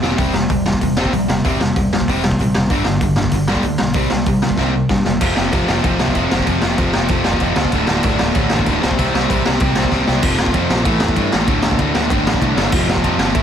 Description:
punk rock; 191 BPM; 4/4; straight; A4 = 440 Hz
distorted electric guitar; riff; 0.0-13.4 s; D2 to C4; -17 LUFS; equal; distortion
growling picked electric bass; bass; 0.0-13.4 s; D1 to G2; -23 LUFS; equal; overdrive
raw garage drum kit; drums; 0.0-13.4 s; crash cymbal, hi-hat, kick drum, ride cymbal, snare drum; -18 LUFS; equal
light reverb; -14 LUFS; side -8 dB against mid
0.0-5.2 A section; 5.2-10.2 B section; 10.2-13.4 C section
drum fill 0.0, 4.6-5.2, 9.9-10.2
0.0 C/E; 2.7 G5; 4.0 C5; 5.2 F5; 7.7 D5; 8.8 C5; 10.2 F5; 10.9 A5; 11.5 D5; 12.7 F5

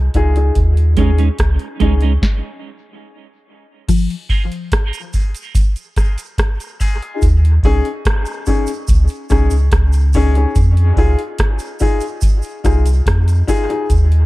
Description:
dub reggae; 72 BPM; 4/4; straight; F minor; A4 = 440 Hz
warm sub bass; bass; 0.0-2.2, 7.2-14.3 s; C2 to F2; -12 LUFS; equal
dark upright piano; stabs; 0.1-13.9 s; Db4 to Ab4; -22 LUFS; left 4 dB; high-pass filter, dub echo
booming analog drum machine; drums; 0.1-14.3 s; crash cymbal, hi-hat, kick drum, rim click, snare drum; -15 LUFS; equal
clean electric guitar; accompaniment; 1.0-4.4 s; Ab3 to Eb4; -22 LUFS; right 9 dB; high-pass filter, dub echo
mellow electric guitar; riff; 3.9-4.1 s; F3; -21 LUFS; left 8 dB; dub echo
cabasa; percussion; 3.9-14.1 s; -35 LUFS; right 7 dB; high-pass filter on perc
digital ambience; dark, warm production; -13 LUFS; side -19 dB against mid
0.0-3.9 A section; 3.9-14.3 B section
break 0.0-0.6, 3.9-7.2; filter sweep 0.6-7.2; stop 2.2-3.9
0.0 Fm7; 0.6 Eb7sus4; 3.9 Fm7; 7.2 Eb7sus4; 10.6 Fm7

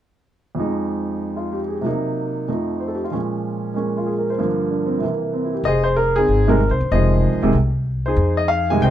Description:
jazz; 189 BPM; 4/4; swing 63% on 8ths; F minor; A4 = 436 Hz
clear upright piano; melody; 0.5-8.9 s; C2 to Ab5; -19 LUFS; right 1 dB; plate reverb
upright bass; bass; 5.6-8.9 s; E1 to F2; -19 LUFS; left 1 dB
light reverb; dark, warm production; -18 LUFS; side -11 dB against mid
0.6-5.6 A section; 5.6-8.9 B section
0.6 Fm7; 1.8 Cm7b5; 2.5 F7; 3.1 Bbm7; 4.4 Gm7; 5.0 C7; 5.6 Fm7

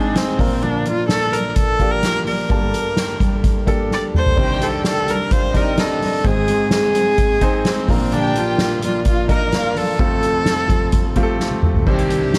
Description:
piano-driven pop; 128 BPM; 4/4; straight; A4 = 440 Hz
clear viola; melody; 0.0-12.4 s; C4 to D5; -23 LUFS; equal
clear baby grand piano; accompaniment; 0.0-12.4 s; F1 to A5; -26 LUFS; equal
fingerpicked steel-string acoustic guitar; riff; 0.0-12.4 s; G2 to Bb4; -27 LUFS; equal
soft-mallet drum kit; drums; 0.2-12.4 s; crash cymbal, hi-hat, kick drum, snare drum, toms; -22 LUFS; equal
dark studio violin section; second line; 4.4-12.4 s; Eb4 to G5; -30 LUFS; equal
light reverb; dark, warm production; -18 LUFS; mono
0.0-11.9 A section
drum fill 3.9-4.4, 11.4-11.9
0.4 Bb; 2.5 Gmadd9; 4.4 Cmadd9; 6.2 Ab; 7.9 Bb; 10.0 F; 11.9 Cmadd9

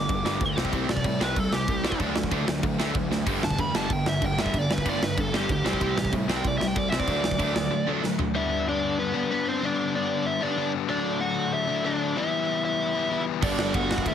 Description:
punk rock; 189 BPM; 4/4; straight; G major; A4 = 435 Hz
biting lead guitar; melody; 0.0-14.1 s; B3 to D6; -28 LUFS; right 2 dB; overdrive, ping-pong delay
cranked stack guitar; riff; 0.0-8.3, 13.4-14.1 s; G2 to D4; -31 LUFS; right 10 dB; overdrive
overdriven electric guitar; riff; 0.0-14.1 s; G2 to E4; -29 LUFS; left 10 dB
fuzz picked electric bass; bass; 0.0-7.7, 13.4-14.1 s; E1 to A2; -32 LUFS; right 1 dB; overdrive
big rock drum kit; drums; 0.1-8.3, 13.4-14.1 s; crash cymbal, kick drum, ride cymbal, snare drum, toms; -28 LUFS; right 1 dB
light reverb; heavily compressed radio sound; -23 LUFS; side -9 dB against mid
0.0-8.4 A section; 8.4-14.1 B section
lead electric guitar solo 0.0-8.4; drum fill 3.1, 8.0-8.4
0.0 G5; 0.6 C5; 2.0 D; 3.3 G5; 5.7 C5; 7.1 D; 8.4 G; 10.9 D; 12.2 Em; 13.4 G

